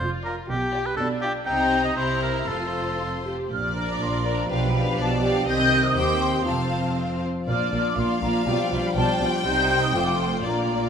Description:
quick classical-period movement for symphony orchestra; 121 BPM; 2/4; rubato; Bb major; A4 = 440 Hz
warm oboe; second line; 0.0-3.3 s; G4 to G5; -26 LUFS; left 1 dB
rich symphonic viola section; accompaniment; 0.0-10.9 s; G3 to Bb4; -29 LUFS; right 1 dB
rich studio cello section; bass; 0.0-10.9 s; Eb2 to C3; -29 LUFS; right 2 dB
warm studio double bass section; bass; 0.0-10.9 s; F1 to Eb2; -30 LUFS; right 2 dB
rich studio violin section; melody; 0.3-10.9 s; C5 to C6; -32 LUFS; left 6 dB
rich studio violin section; second line; 0.3-10.9 s; Eb4 to G5; -30 LUFS; left 2 dB
large flute ensemble; second line; 3.5-10.9 s; G5 to G6; -27 LUFS; equal
warm French horn section; sustained chords; 3.5-10.9 s; Eb3 to F4; -30 LUFS; left 4 dB
wet scoring stage reverb, RT60 1.9 s; -21 LUFS; side -7 dB against mid
0.0-3.5 A section; 3.5-10.9 A section
0.0 Bb; 0.5 G7/B; 1.5 Cm7; 2.0 C7; 2.5 F; 3.5 Bb; 4.5 G7/B; 5.5 Cm; 6.0 Cm/Eb; 6.5 F; 7.5 Bb; 8.5 G7/B; 9.4 Cm; 9.9 F

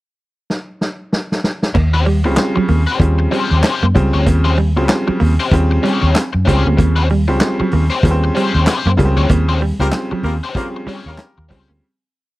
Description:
funk; 95 BPM; 4/4; swing 60% on 16ths; Eb mixolydian; A4 = 441 Hz
vintage drum kit; drums; 0.5-11.7 s; crash cymbal, handclaps, hi-hat, kick drum, snare drum; -18 LUFS; equal
crunchy overdriven guitar; accompaniment; 1.7-11.7 s; Db4 to Db5; -20 LUFS; left 4 dB; wah
semi-hollow electric guitar; riff; 1.7-11.8 s; Gb3 to Bb3; -20 LUFS; right 3 dB; lush chorus
vintage muted fingered electric bass; bass; 1.7-11.8 s; Db2 to Gb2; -15 LUFS; equal
bright upright piano; stabs; 2.3-11.8 s; Db3 to C4; -20 LUFS; equal
warm horn section; second line; 9.8-11.5 s; G3 to Bb4; -24 LUFS; left 2 dB
little or no reverb; dry, close 1970s-style studio recording; -13 LUFS; side -18 dB against mid
0.0-1.8 pickup bar; 1.8-11.8 groove
drum fill 0.5-1.8; fade-out 9.3-11.8; band accent 9.3-11.8
0.0 N.C.; 1.8 Eb13

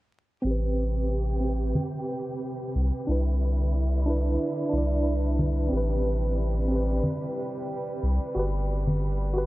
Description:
trip hop; 91 BPM; 4/4; swing 55% on 16ths; A minor; A4 = 440 Hz
bright tine electric piano; accompaniment; 0.4-9.5 s; C4 to D5; -30 LUFS; right 1 dB; tremolo, low-pass filter, tape echo
rich studio string section; sustained chords; 0.4-9.5 s; C3 to B4; -35 LUFS; right 1 dB
round analog bass; bass; 0.4-9.5 s; G1 to C2; -25 LUFS; equal
tube shaker and congas; percussion; 1.1-9.2 s; -33 LUFS; equal
moderate huge ambient reverb, RT60 9.3 s; dreamy mix soaked in reverb, vinyl crackle, low-pass filter; -24 LUFS; side -18 dB against mid
0.4-9.5 A section
filter sweep on tine electric piano 0.4-9.5; filter sweep 0.4-9.5
0.4 Am9; 3.1 Cmaj9; 5.7 Am9; 8.4 Gmaj7

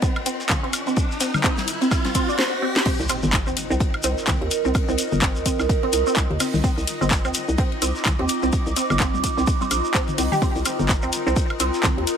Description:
minimal techno; 127 BPM; 4/4; swing 58% on 16ths; C minor; A4 = 440 Hz
resonant blip pluck; riff; 0.0-11.9 s; C4 to C5; -26 LUFS; right 2 dB; phaser, ensemble chorus, sidechain pumping, dub echo
damped 70s drum kit; drums; 0.0-12.2 s; hi-hat, ride cymbal, snare drum; -35 LUFS; left 2 dB; sidechain pumping on cymbals, high-pass filter on cymbals, sidechain pumping on hats, high-pass filter on hats, high-pass filter on snare, high-pass filter on room
electronic kick drum; drums; 0.0-11.9 s; -22 LUFS; equal; overdrive
shekere; percussion; 0.0-12.2 s; -31 LUFS; left 1 dB
riser and impact; sound effects; 0.0-4.7 s; -29 LUFS; equal
warbly tape-like pad; texture; 0.0-12.2 s; C4 to D6; -28 LUFS; right 3 dB; chorus, built-in reverb, sidechain pumping
electronic woodblock and toms; percussion; 0.2-11.9 s; -28 LUFS; left 3 dB; ping-pong delay
house drum kit; drums; 0.3-12.2 s; crash cymbal, handclaps, hi-hat, snare drum; -23 LUFS; left 1 dB; overdrive
bubbling stepped-filter texture; texture; 3.1-12.2 s; Eb4 to Eb5; -34 LUFS; equal; chorus, built-in reverb, sidechain pumping
hollow knocking FM bass; bass; 3.0-12.1 s; G1 to Eb2; -25 LUFS; equal; sidechain pumping
little or no reverb; -19 LUFS; side -8 dB against mid
0.0-2.9 A section; 2.9-12.2 B section
build-up 0.0-2.9; riser 0.0-2.9; filter sweep on synth arpeggio sound 0.0-2.9; drum fill 2.4-2.9; drop 2.9-12.2; impact 2.9-4.7
0.0 Cm7

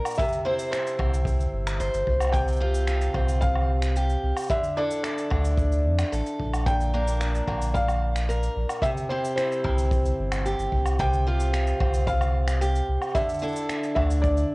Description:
folktronica; 111 BPM; 4/4; straight; A4 = 440 Hz
picked acoustic archtop guitar; arpeggios; 0.0-14.5 s; Bb2 to C5; -28 LUFS; equal; cassette tape
electronic woodblock, cabasa and finger snaps; drums; 0.1-14.5 s; -35 LUFS; equal; cassette tape
felt-muted upright piano; melody; 0.2-14.5 s; C5 to G5; -30 LUFS; equal; cassette tape, tape echo
kick drum; drums; 0.2-14.3 s; -29 LUFS; equal; cassette tape
warm sub bass; bass; 1.0-14.4 s; G1 to F2; -24 LUFS; equal
light reverb, small room ambience; home recording on cassette; -22 LUFS; side -24 dB against mid
0.0-14.5 A section
0.2 C; 2.3 Fsus2/C; 4.5 Dmadd9; 6.7 Bb; 8.8 C; 11.0 Fsus2/C; 13.2 Dsus2

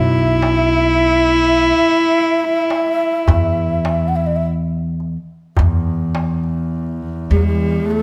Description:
Arabic maqam ensemble; 105 BPM (eighths); 10/8; straight; A4 = 440 Hz
warm cello; melody; 0.0-8.0 s; F#3 to E4; -18 LUFS; equal
breathy mellow low ney; second line; 0.0-8.0 s; G4+47c to F#5; -23 LUFS; equal
upright bass; bass; 0.0-7.8 s; B1 to E2; -21 LUFS; equal
darbuka; percussion; 0.4-6.6 s; -22 LUFS; equal
clear double bass; drone; 5.6-8.0 s; E2; -27 LUFS; equal
light reverb; close, detailed microphones; -17 LUFS; mono
0.0-5.6 A section; 5.6-8.0 B section

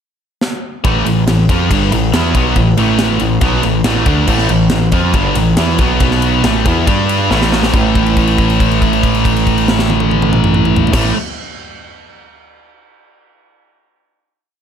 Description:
hard rock; 139 BPM; 4/4; straight; A4 = 442 Hz
tight metal drum kit; drums; 0.4-11.0 s; crash cymbal, kick drum, ride cymbal, snare drum, toms; -17 LUFS; equal
scooped high-gain guitar; riff; 0.8-11.1 s; G2 to G4; -16 LUFS; left 10 dB; distortion
sludgy distorted guitar; riff; 0.8-11.1 s; G2 to G4; -16 LUFS; right 10 dB; overdrive
growling picked electric bass; bass; 0.8-11.1 s; G1 to G2; -17 LUFS; equal; overdrive
light reverb, studio ambience; -10 LUFS; side -8 dB against mid
0.0-0.8 pickup bar; 0.8-7.7 riff; 7.7-11.2 final chord
drum fill 0.4-0.8, 7.3-7.7; held note 7.7-10.9
0.0 N.C.; 0.8 Am; 6.0 B5; 6.4 A5; 6.9 G5; 7.3 A5

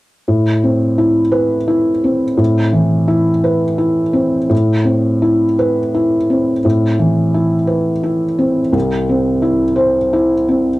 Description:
neoclassical minimalist piano; 85 BPM; 3/4; rubato; A minor; A4 = 440 Hz
felt-muted upright piano; solo; 0.3-10.8 s; C2 to C5; -12 LUFS; equal
small room reverb; dry, close 1970s-style studio recording; -12 LUFS; side -18 dB against mid
0.3-4.5 A section; 4.5-10.8 B section
0.3 Amadd9; 8.7 C

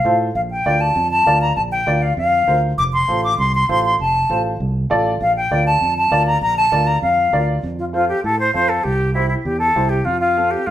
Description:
latin, cumbia; 198 BPM; 4/4; straight; F major; A4 = 439 Hz
bright concert flute; melody; 0.0-10.7 s; E4 to D6; -16 LUFS; left 1 dB
warm upright piano; accompaniment; 0.0-10.6 s; C4 to D5; -22 LUFS; right 1 dB
fingered electric bass; bass; 0.0-10.7 s; F1 to A2; -22 LUFS; right 1 dB
wet studio reverb, RT60 0.8 s; band playing live in one room; -15 LUFS; side -12 dB against mid
0.0-7.6 A section; 7.6-10.7 B section
0.3 Bb; 2.8 F; 5.2 Bb; 7.6 F; 8.8 C; 10.1 F

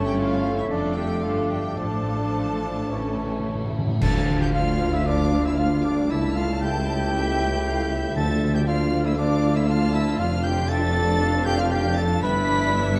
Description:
classical, dramatic, fast romantic movement for symphony orchestra; 116 BPM; 4/4; rubato; D minor; A4 = 438 Hz
clear clarinet; second line; 0.0-13.0 s; D4 to B4; -33 LUFS; equal
mellow oboe; second line; 0.0-12.8 s; C#5 to B5; -34 LUFS; equal
rich symphonic violin section; second line; 0.0-13.0 s; E4 to A5; -38 LUFS; equal
small flute group; second line; 0.0-12.7 s; D5 to B5; -34 LUFS; equal
mellow bassoon; accompaniment; 0.0-3.7 s; E3 to A3; -37 LUFS; equal
rich symphonic viola section; accompaniment; 0.0-13.0 s; A3 to F4; -34 LUFS; equal
mellow French horn section; sustained chords; 0.0-13.0 s; E3 to E4; -31 LUFS; equal
concert harp; arpeggios; 0.0-13.0 s; F2 to G5; -34 LUFS; equal
rich symphonic cello section; bass; 0.0-13.0 s; C#2 to A2; -32 LUFS; equal
rich symphonic double bass section; bass; 0.0-13.0 s; F1 to D2; -32 LUFS; equal
clear chamber violin section; melody; 0.1-13.0 s; D5 to B6; -38 LUFS; equal
timpani; percussion; 2.9-4.8, 8.2-8.9 s; A2 to D3; -32 LUFS; equal
warm tuba; bass; 4.0-13.0 s; F1 to D2; -32 LUFS; equal
clash cymbals and concert bass drum; percussion; 4.0-5.0 s; -34 LUFS; equal
wet concert hall reverb, RT60 1.9 s; dark, warm production; -23 LUFS; mono
0.0-4.0 A section; 4.0-13.0 B section
timpani fill 2.9-4.0; band accent 4.0-4.5
0.0 A7/G; 0.7 Dm/F; 1.8 Dm/A; 2.9 A; 4.0 Dm; 6.1 A7/C#; 8.2 Dm; 10.2 Dm/F; 12.2 Em7/G

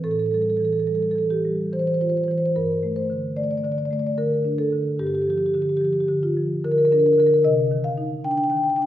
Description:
classical, contemporary piece for solo marimba; 74 BPM; 3/4; rubato; A4 = 440 Hz
marimba with soft mallets; solo; 0.0-8.9 s; G2 to G5; -19 LUFS; equal
wet recital hall reverb, RT60 1.3 s; heard from further back in the room; -19 LUFS; side -12 dB against mid
0.0-8.9 A section
0.0 Fmaj9/A; 2.6 Gsus2; 5.0 Gm7; 7.5 Cmadd9

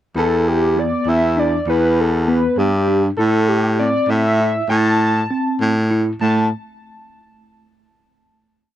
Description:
progressive instrumental, progressive; 198 BPM (eighths); 5/8; straight; A minor; A4 = 440 Hz
pulse-width lead; melody; 0.2-6.5 s; G4 to A5; -19 LUFS; equal; chorus
tine electric piano; arpeggios; 0.2-6.5 s; A3 to E4; -22 LUFS; equal; fast stereo tremolo
breathy baritone saxophone; bass; 0.2-6.5 s; E2 to A2; -17 LUFS; equal
small room ambience; dry, close 1970s-style studio recording; -14 LUFS; side -12 dB against mid
0.2-6.2 A section; 6.2-7.7 final note
0.2 Em; 3.2 Am; 6.2 N.C.

